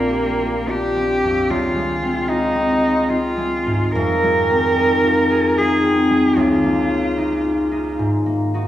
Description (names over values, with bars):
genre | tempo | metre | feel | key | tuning
classical, impressionist duo for cello and harp | 74 BPM | 3/4 | rubato | Db major from 4.0 s | A4 = 439 Hz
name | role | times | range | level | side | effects
rich cello | melody | 0.0-8.0 s | Bb3 to Bb4 | -19 LUFS | equal | none
concert harp | accompaniment | 0.0-8.7 s | Bb1 to Ab4 | -18 LUFS | left 1 dB | none
room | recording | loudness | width
wet recital hall reverb, RT60 1.6 s | heard from further back in the room | -16 LUFS | side -12 dB against mid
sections
0.0-8.7 A section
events
none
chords
0.0 Bb69; 1.5 Dbmaj7; 4.0 Fm7; 6.4 Db69; 8.0 Ab9sus4